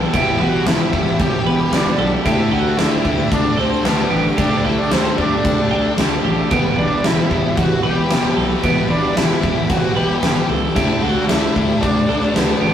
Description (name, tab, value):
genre	rock, shoegaze and dream pop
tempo	113 BPM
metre	4/4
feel	straight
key	E minor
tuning	A4 = 441 Hz
part	string machine, violins	sustained chords	0.0-12.7 s	G4 to E6	-27 LUFS	equal	ensemble chorus
part	twelve-string electric guitar	arpeggios	0.0-12.7 s	G4 to B4	-26 LUFS	right 4 dB	none
part	crunchy overdriven guitar	riff	0.0-12.7 s	E2 to G4	-26 LUFS	right 4 dB	none
part	distorted electric guitar	riff	0.0-12.7 s	E2 to D4	-27 LUFS	equal	none
part	thick fuzz guitar	riff	0.0-12.7 s	E2 to D4	-21 LUFS	left 4 dB	distortion
part	growling fingered electric bass	bass	0.0-12.7 s	E1 to D2	-25 LUFS	equal	overdrive
part	octave-fuzz lead guitar	melody	0.1-12.7 s	B3 to G4	-22 LUFS	right 1 dB	distortion
part	huge arena drum kit	drums	0.1-12.5 s	crash cymbal, kick drum, snare drum	-20 LUFS	equal	none
room	wet small room reverb, RT60 0.5 s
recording	rough rehearsal-room recording, tube saturation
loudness	-14 LUFS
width	side -9 dB against mid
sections	0.0-12.7 A section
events	none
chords	0.0 Em; 2.3 Dsus4; 6.5 Em7; 10.8 Dsus4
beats	| 0.13 0.66 1.19 1.72 | 2.26 2.79 3.32 3.85 | 4.38 4.92 5.45 5.98 | 6.51 7.04 7.58 8.11 | 8.64 9.17 9.70 10.23 | 10.77 11.30 11.83 12.36